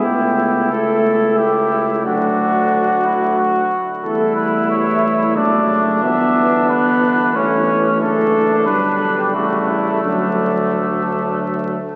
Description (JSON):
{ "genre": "classical, brass quintet", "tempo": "90 BPM", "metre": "3/4", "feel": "rubato", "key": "D major", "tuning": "A4 = 440 Hz", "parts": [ { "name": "warm cornet", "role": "melody", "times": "0.0-11.4 s", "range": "D4 to E5", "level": "-22 LUFS", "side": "equal", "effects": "none" }, { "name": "clear trumpet", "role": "second line", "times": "0.0-11.8 s", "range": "A3 to F#4", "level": "-22 LUFS", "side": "equal", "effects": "none" }, { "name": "dark French horn", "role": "accompaniment", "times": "0.0-11.8 s", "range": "F#3 to B3", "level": "-23 LUFS", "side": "equal", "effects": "none" }, { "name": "dark euphonium", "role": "accompaniment", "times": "0.0-11.8 s", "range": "C#3 to A3", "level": "-28 LUFS", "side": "equal", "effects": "none" }, { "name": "warm tuba", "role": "bass", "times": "0.1-11.8 s", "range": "F#1 to E2", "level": "-28 LUFS", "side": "equal", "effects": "none" } ], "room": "wet church reverb, RT60 3.5 s", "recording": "very old 78 rpm record, vinyl crackle", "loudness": "-17 LUFS", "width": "mono", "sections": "0.0-12.0 A section", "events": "none", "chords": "0.0 A7/C#; 2.1 D; 4.0 A7/E; 5.4 D/F#; 6.0 Em7/G; 7.3 A; 8.0 D/F#; 8.7 G/B; 9.3 A7; 10.0 D" }